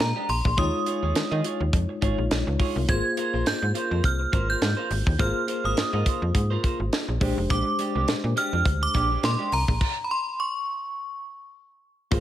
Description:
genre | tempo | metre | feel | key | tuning
early-eighties boogie funk | 104 BPM | 4/4 | swing 56% on 16ths | Ab major | A4 = 440 Hz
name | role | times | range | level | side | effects
metallic FM bell | melody | 0.0-11.2 s | Bb5 to Ab6 | -28 LUFS | right 1 dB | chorus, slapback echo
mellow tine electric piano | accompaniment | 0.0-12.2 s | Ab3 to Db5 | -30 LUFS | left 4 dB | medium stereo tremolo
electric guitar at the edge of break-up | riff | 0.0-12.2 s | Ab3 to Eb5 | -33 LUFS | right 7 dB | lush chorus
slap-like FM bass | bass | 0.0-12.2 s | F1 to Eb3 | -26 LUFS | equal | none
tight funk drum kit | drums | 0.0-12.2 s | crash cymbal, hi-hat, kick drum, snare drum | -26 LUFS | equal | none
room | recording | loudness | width
studio ambience | none | -22 LUFS | side -12 dB against mid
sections
0.0-12.1 A section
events
stop 9.8-12.1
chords
0.0 Bb13; 0.6 Eb9sus4; 2.9 Ab69; 7.2 Bb13; 9.8 N.C.

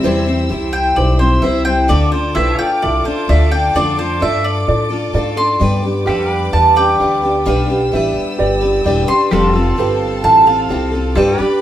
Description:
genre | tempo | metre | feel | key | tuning
honky-tonk and classic country | 130 BPM | 4/4 | straight | unclear | A4 = 441 Hz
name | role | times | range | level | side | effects
dark upright piano | accompaniment | 0.0-11.6 s | B3 to F5 | -21 LUFS | right 3 dB | none
picked steel-string acoustic guitar | accompaniment | 0.0-11.6 s | C3 to C5 | -19 LUFS | left 2 dB | none
pedal steel guitar | sustained chords | 0.0-11.6 s | C4 to D5 | -27 LUFS | equal | none
warm chamber violin section | sustained chords | 0.0-11.6 s | B3 to E6 | -27 LUFS | equal | none
upright bass | bass | 0.0-11.4 s | E1 to A2 | -18 LUFS | equal | none
mandolin | melody | 0.7-11.4 s | C5 to C6 | -15 LUFS | right 1 dB | none
room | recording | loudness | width
wet stone room reverb, RT60 0.9 s | band playing live in one room | -12 LUFS | side -11 dB against mid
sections
0.0-11.6 A section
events
mandolin solo 0.0-11.6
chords
0.0 C; 1.9 Dm; 5.6 G; 9.3 Fadd9

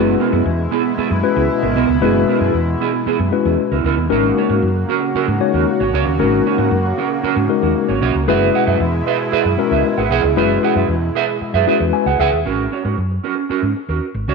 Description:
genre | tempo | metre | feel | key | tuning
funk | 115 BPM | 4/4 | straight | G# minor | A4 = 443 Hz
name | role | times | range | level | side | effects
mellow tine electric piano | accompaniment | 0.0-12.4 s | G#3 to G#5 | -18 LUFS | left 12 dB | medium stereo tremolo
chorused pulse-width pad | sustained chords | 0.0-12.4 s | B2 to F#4 | -23 LUFS | equal | none
mellow electric guitar | riff | 0.0-14.3 s | B3 to F#5 | -19 LUFS | right 11 dB | lush chorus
woody fretless electric bass | bass | 0.0-14.3 s | F#1 to G#2 | -20 LUFS | equal | none
room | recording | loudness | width
moderate echo chamber reverb, RT60 1.6 s, digital ambience | 1960s-style stereo with parts hard left and right | -14 LUFS | side -4 dB against mid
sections
0.0-12.5 A section; 12.5-14.3 B section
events
tine electric piano fill 11.7-12.5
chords
0.0 F#9sus4; 4.1 G#9sus4; 8.3 F#9sus4; 12.5 G#9sus4

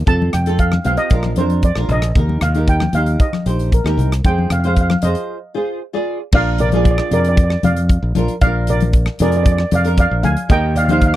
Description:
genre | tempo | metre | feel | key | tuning
calypso | 115 BPM | 4/4 | straight | unclear | A4 = 440 Hz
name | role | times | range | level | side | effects
modern bright fingered electric bass | bass | 0.0-11.1 s | Bb1 to F2 | -17 LUFS | equal | none
steel pan | melody | 0.1-11.1 s | Bb4 to A5 | -20 LUFS | right 1 dB | none
flamenco guitar | accompaniment | 0.1-11.2 s | C4 to D5 | -22 LUFS | right 1 dB | double-tracked left and right
modern studio drum kit | drums | 0.1-11.2 s | crash cymbal, hi-hat, kick drum, rim click | -16 LUFS | equal | none
congas | percussion | 0.1-11.0 s | none | -23 LUFS | left 4 dB | none
room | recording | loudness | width
little or no reverb | dry, close 1970s-style studio recording | -14 LUFS | side -14 dB against mid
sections
0.0-6.3 A section; 6.3-11.2 B section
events
break 5.3-6.3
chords
0.1 F; 1.1 Bb; 2.2 Eb; 4.2 Fm7; 6.3 Bb7; 10.5 Eb

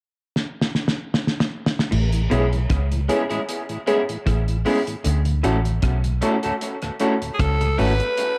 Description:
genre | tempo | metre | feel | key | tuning
lovers rock reggae | 77 BPM | 4/4 | swing 55% on 16ths | A major | A4 = 441 Hz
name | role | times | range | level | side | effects
cloth-damped thuddy drum kit | drums | 0.4-8.4 s | crash cymbal, hi-hat, kick drum, rim click, snare drum | -27 LUFS | equal | none
electric guitar through a small old amp | riff | 1.9-7.9 s | G#2 to D3 | -34 LUFS | equal | none
vintage muted fingered electric bass | bass | 1.9-8.0 s | G#1 to D2 | -23 LUFS | equal | none
mellow tonewheel organ | accompaniment | 2.1-7.9 s | D2 to G#4 | -35 LUFS | equal | none
tine electric piano | accompaniment | 2.3-7.9 s | A3 to G#4 | -29 LUFS | equal | phaser, dub echo
electric guitar through a small old amp | stabs | 2.3-7.9 s | G#3 to A4 | -27 LUFS | equal | dub echo
raspy alto saxophone | melody | 7.3-8.4 s | G#4 to B4 | -24 LUFS | equal | tape echo
room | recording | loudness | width
light reverb, small room ambience | dark, warm production | -22 LUFS | mono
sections
0.0-1.9 A section; 1.9-8.2 B section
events
drum fill 0.4-1.9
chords
0.0 N.C.; 1.9 Amaj7; 5.0 Dmaj7

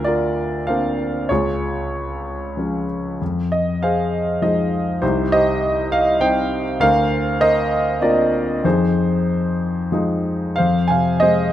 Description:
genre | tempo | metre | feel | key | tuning
classical, lyrical solo piano | 89-103 BPM | 3/4 | rubato | F minor | A4 = 440 Hz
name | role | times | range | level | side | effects
warm grand piano | solo | 0.0-11.5 s | C2 to Ab5 | -17 LUFS | equal | none
room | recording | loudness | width
light reverb | close, detailed microphones | -17 LUFS | side -12 dB against mid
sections
0.0-10.6 A section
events
none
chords
0.0 Bbadd9/D; 1.3 Db; 3.2 Fm7; 5.0 Cm; 6.8 Bbadd9/D; 8.6 Fm7

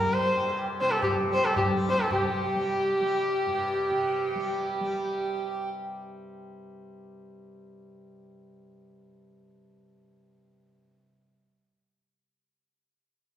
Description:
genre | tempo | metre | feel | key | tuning
indian classical, Hindustani | 139 BPM | 7/4 | straight | unclear | A4 = 439 Hz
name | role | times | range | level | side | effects
warm sarangi | melody | 0.0-5.6 s | G4 to C5 | -26 LUFS | equal | none
hand-pumped harmonium | second line | 0.0-5.7 s | G4 to C5 | -34 LUFS | right 4 dB | none
tanpura | drone | 0.0-11.3 s | G2 to G3 | -38 LUFS | equal | none
tabla | percussion | 0.4-2.3 s | none | -30 LUFS | left 1 dB | none
room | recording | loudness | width
wet recital hall reverb, RT60 1.6 s | heard from further back in the room | -25 LUFS | side -11 dB against mid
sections
0.0-2.1 A section; 2.1-5.1 B section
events
speeding up 0.0-5.1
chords
none

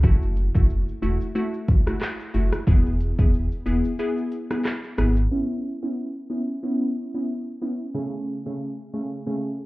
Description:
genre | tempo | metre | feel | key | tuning
dancehall | 91 BPM | 4/4 | swing 56% on 16ths | C# minor | A4 = 440 Hz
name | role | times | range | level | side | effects
glassy wavetable pluck | accompaniment | 0.0-9.7 s | C#3 to G#4 | -26 LUFS | equal | chorus, sidechain pumping
sub bass with octave | bass | 0.0-5.3 s | E1 to G#1 | -22 LUFS | equal | none
afro-pop drum kit | drums | 0.0-5.3 s | handclaps, hi-hat, kick drum, rim click, shaker | -20 LUFS | equal | none
room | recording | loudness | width
light reverb | heard muffled through a wall, club reverb, EQ, low-pass filter | -22 LUFS | side -20 dB against mid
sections
0.0-5.3 A section; 5.3-9.7 B section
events
break 4.0-5.3; filter sweep 5.3-9.7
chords
0.0 F#m7; 2.7 E; 5.3 C#m7; 7.9 Amaj7/C#

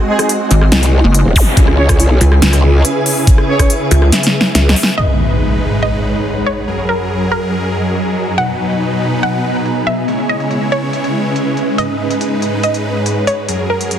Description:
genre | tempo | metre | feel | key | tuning
heavy wobble dubstep | 141 BPM | 4/4 | half-time | G# minor | A4 = 441 Hz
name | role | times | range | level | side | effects
supersaw chords | sustained chords | 0.0-14.0 s | F#2 to C#5 | -18 LUFS | equal | sidechain pumping, low-pass filter
granular cloud pad | texture | 0.0-14.0 s | F#3 to B#5 | -20 LUFS | equal | built-in reverb, sidechain pumping
warm brass ensemble | stabs | 0.1-3.7 s | G#3 to C#5 | -19 LUFS | right 2 dB | digital delay
big-room dance drum kit | drums | 0.2-14.0 s | crash cymbal, hi-hat, rim click, snare drum | -16 LUFS | equal | overdrive, low-pass filter on hats, studio ambience, low-pass filter on snare, low-pass filter on cymbals
pulsing pluck wobble bass | bass | 0.5-4.1 s | F#1 to C#2 | -8 LUFS | equal | chorus, overdrive
growl bass | bass | 0.7-4.7 s | D#1 to C#2 | -10 LUFS | equal | chorus, overdrive
electronic kick drum | drums | 1.4-3.7 s | none | -11 LUFS | equal | studio ambience
zap and impact | sound effects | 1.4-1.5, 5.0-6.7 s | none | -18 LUFS | equal | none
wide unison pluck | melody | 5.0-14.0 s | A#4 to F#5 | -20 LUFS | right 1 dB | digital delay
room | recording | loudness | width
light reverb | dense, heavily limited modern master | -11 LUFS | side -10 dB against mid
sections
0.0-5.0 A section; 5.0-14.0 B section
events
drop 0.0-5.0; kick drops out 4.1-5.0; drum fill 4.1-5.0; impact 5.0-6.7; filter sweep on drum 5.0-14.0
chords
0.0 G#7; 1.6 C#m; 5.0 G#m; 6.7 F#add9; 8.4 B; 10.1 C#m; 11.8 G#m; 13.5 F#add9

